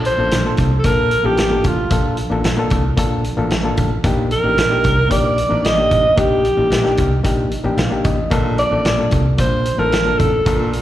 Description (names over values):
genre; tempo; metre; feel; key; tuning
uptempo 1960s-style soul; 112 BPM; 4/4; straight; Bb major; A4 = 440 Hz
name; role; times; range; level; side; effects
overdriven reed electric piano; accompaniment; 0.0-10.7 s; Bb3 to F5; -21 LUFS; left 3 dB; slapback echo
modern bright picked electric bass; bass; 0.0-10.8 s; A1 to C2; -20 LUFS; equal; none
vintage drum kit; drums; 0.0-10.8 s; hi-hat, kick drum, snare drum; -20 LUFS; equal; none
warm alto saxophone; melody; 0.1-10.7 s; F4 to Eb5; -17 LUFS; right 1 dB; slapback echo
warm baritone saxophone; riff; 8.3-10.8 s; Bb2; -26 LUFS; right 4 dB; slapback echo
congas; percussion; 9.0-10.7 s; none; -31 LUFS; right 3 dB; none
room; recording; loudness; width
small room ambience; live gig heard through the venue's PA, recital hall reverb; -14 LUFS; side -13 dB against mid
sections
0.0-10.8 A section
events
reed electric piano fill 7.5-8.3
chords
0.0 Bbmaj7; 4.0 Ebmaj7; 8.3 Bbmaj7